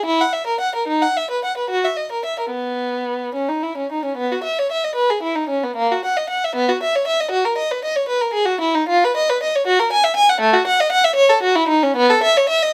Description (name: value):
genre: classical, baroque-style suite movement for unaccompanied violin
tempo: 70-81 BPM (dotted quarters)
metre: 6/8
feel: rubato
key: B major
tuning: A4 = 440 Hz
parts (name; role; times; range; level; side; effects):
- warm violin; solo; 0.0-12.7 s; A3 to G#5; -18 LUFS; equal; none
room: light reverb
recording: none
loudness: -18 LUFS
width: mono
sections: 0.0-4.2 A section; 4.2-12.7 B section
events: none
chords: none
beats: 0.06 | 0.87 1.68 | 2.50 3.34 | 4.18 4.97 | 5.78 6.56 | 7.31 8.07 | 8.87 9.65 | 10.41 11.17 | 11.97